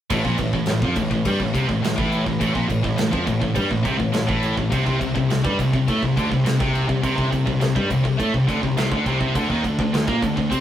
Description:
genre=heavy metal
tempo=104 BPM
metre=4/4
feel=straight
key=A minor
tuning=A4 = 440 Hz
part: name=heavy high-gain guitar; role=riff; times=0.1-10.6 s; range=A2 to C4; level=-23 LUFS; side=left 4 dB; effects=distortion
part: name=heavy high-gain guitar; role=riff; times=0.1-10.6 s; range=A2 to C4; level=-26 LUFS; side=right 6 dB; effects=distortion
part: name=fuzz picked electric bass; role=bass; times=0.1-10.6 s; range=A1 to C3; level=-23 LUFS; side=right 1 dB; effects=overdrive
part: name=big rock drum kit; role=drums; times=0.1-10.6 s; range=crash cymbal, kick drum, snare drum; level=-26 LUFS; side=equal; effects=none
room=light reverb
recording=rough rehearsal-room recording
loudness=-18 LUFS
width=side -11 dB against mid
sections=0.1-10.6 A section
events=none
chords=0.1 Am; 4.7 C5; 9.4 D7(no3)

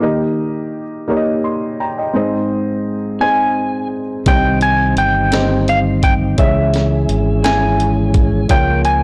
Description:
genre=slow gospel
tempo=57 BPM (dotted quarters)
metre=6/8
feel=straight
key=Ab major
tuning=A4 = 440 Hz
part: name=dark baby grand piano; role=accompaniment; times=0.0-9.0 s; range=Ab2 to C6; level=-21 LUFS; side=equal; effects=none
part: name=clean lap steel guitar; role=melody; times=3.2-9.0 s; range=Fb5 to Ab5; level=-19 LUFS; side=equal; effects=none
part: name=mellow tonewheel organ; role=sustained chords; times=4.3-9.0 s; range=Eb3 to Bb4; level=-22 LUFS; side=equal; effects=slow rotary speaker, chorus vibrato
part: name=fingered electric bass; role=bass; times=4.3-9.0 s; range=G1 to Db2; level=-20 LUFS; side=equal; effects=none
part: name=breakbeat sampler-style drum kit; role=drums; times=4.3-9.0 s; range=hi-hat, kick drum, snare drum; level=-19 LUFS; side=equal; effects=none
room=moderate lush hall reverb, RT60 1.8 s, digital ambience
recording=blown-out, overdriven recording, overdrive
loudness=-16 LUFS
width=mono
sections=0.0-9.0 A section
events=none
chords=0.0 Eb; 2.1 Ab; 4.3 Cm; 6.4 Dbm; 8.5 Bbm

